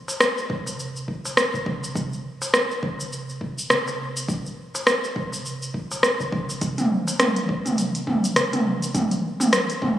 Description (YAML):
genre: downtempo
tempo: 103 BPM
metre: 4/4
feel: swing 58% on 16ths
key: none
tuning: none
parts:
  - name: organic electronic drum kit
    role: drums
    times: 0.1-10.0 s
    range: hi-hat, rim click, shaker, toms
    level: -21 LUFS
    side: equal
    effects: none
  - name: darbuka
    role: percussion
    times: 0.1-10.0 s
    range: none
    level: -34 LUFS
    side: equal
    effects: none
  - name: electronic kick drum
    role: drums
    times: 0.5-10.0 s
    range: none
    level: -29 LUFS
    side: equal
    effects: none
room: wet lush hall reverb, RT60 2.0 s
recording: recorded on a phone in the room, club reverb, compression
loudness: -21 LUFS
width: side -12 dB against mid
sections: 0.0-10.0 A section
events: none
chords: none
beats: 0.21 0.79 1.37 | 1.96 2.54 3.12 3.70 | 4.29 4.87 5.45 6.03 | 6.62 7.20 7.78 8.36 | 8.95 9.53